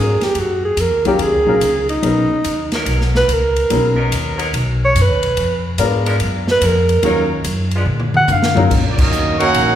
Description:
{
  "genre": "jazz, big band swing",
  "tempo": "144 BPM",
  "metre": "4/4",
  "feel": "swing 66% on 8ths",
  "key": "Eb minor",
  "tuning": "A4 = 439 Hz",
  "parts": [
    { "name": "dark alto saxophone", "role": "melody", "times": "0.0-8.7 s", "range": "Eb4 to Gb5", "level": "-16 LUFS", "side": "right 2 dB", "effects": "none" },
    { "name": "mellow saxophone section", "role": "sustained chords", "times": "0.0-0.2, 2.7-9.5 s", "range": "Gb3 to Bb4", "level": "-25 LUFS", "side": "equal", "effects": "none" },
    { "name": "upright bass", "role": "bass", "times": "0.0-9.8 s", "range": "Bb1 to D3", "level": "-19 LUFS", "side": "equal", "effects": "none" },
    { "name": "swinging big-band drum kit", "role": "drums", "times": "0.2-9.7 s", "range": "crash cymbal, hi-hat, kick drum, ride cymbal, snare drum, toms", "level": "-22 LUFS", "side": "left 1 dB", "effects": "none" },
    { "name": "warm baby grand piano", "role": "accompaniment", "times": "1.1-8.7 s", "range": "Gb3 to Bb4", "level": "-20 LUFS", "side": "left 4 dB", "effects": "none" },
    { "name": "clear trumpet section", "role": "melody", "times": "8.9-9.8 s", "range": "Db4 to Gb5", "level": "-16 LUFS", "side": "equal", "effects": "none" },
    { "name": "mellow trombone section", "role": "second line", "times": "9.0-9.8 s", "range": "Gb3 to Gb4", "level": "-19 LUFS", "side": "right 4 dB", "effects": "none" }
  ],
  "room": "wet recital hall reverb, RT60 1.7 s",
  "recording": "recorded in a church or concert hall",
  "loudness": "-13 LUFS",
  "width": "side -10 dB against mid",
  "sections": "0.0-8.7 A section; 8.7-9.8 B section",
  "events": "alto saxophone solo 0.0-8.7; drum fill 7.9-8.7; band accent 8.9",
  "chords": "0.0 Ebm7; 2.0 Bmaj7; 5.4 Bb7b9; 7.0 Ebm7; 7.9 Bb; 8.7 Ebm7"
}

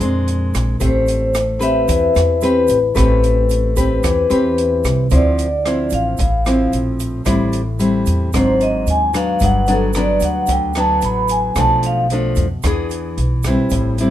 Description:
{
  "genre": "bossa nova",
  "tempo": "112 BPM",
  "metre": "4/4",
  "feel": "straight",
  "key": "A minor",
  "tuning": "A4 = 442 Hz",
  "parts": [
    { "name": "nylon-string guitar", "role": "accompaniment", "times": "0.0-14.1 s", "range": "G2 to B4", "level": "-17 LUFS", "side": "left 2 dB", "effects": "none" },
    { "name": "upright bass", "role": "bass", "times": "0.0-14.1 s", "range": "G1 to F2", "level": "-19 LUFS", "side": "equal", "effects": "none" },
    { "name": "open jazz drum kit", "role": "drums", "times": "0.0-14.1 s", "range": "hi-hat, kick drum, rim click", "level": "-23 LUFS", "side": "equal", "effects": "none" },
    { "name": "tube shaker", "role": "percussion", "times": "0.0-14.1 s", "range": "none", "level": "-36 LUFS", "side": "right 10 dB", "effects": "none" },
    { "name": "vibraphone with medium hard mallets", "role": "melody", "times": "0.9-12.0 s", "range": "A4 to B5", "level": "-18 LUFS", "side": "right 1 dB", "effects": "none" }
  ],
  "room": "light reverb",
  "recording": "minimal, uncompressed stereo recording",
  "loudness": "-14 LUFS",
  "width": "side -12 dB against mid",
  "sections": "0.0-5.1 A section; 5.1-14.1 A section",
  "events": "vibraphone solo 0.0-14.1",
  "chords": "0.0 Bb9; 0.8 Am9; 5.1 Dm9; 7.3 Am7; 8.3 G#7#11; 9.4 Gmaj7; 11.6 Bm7b5; 12.6 E7"
}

